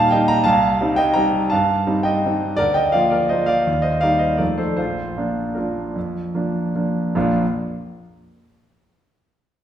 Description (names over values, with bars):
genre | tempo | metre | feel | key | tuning
classical, piano waltz | 148-180 BPM | 3/4 | rubato | Bb major | A4 = 440 Hz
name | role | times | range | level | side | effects
clear concert grand piano | solo | 0.0-7.4 s | Bb1 to Bb5 | -17 LUFS | right 1 dB | none
room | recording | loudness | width
wet recital hall reverb, RT60 1.4 s | heard from further back in the room | -17 LUFS | side -10 dB against mid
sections
0.0-7.1 A section; 7.1-8.3 B section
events
none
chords
0.5 Cm; 2.6 Bb/D; 3.7 Eb; 4.4 F7; 4.8 Bb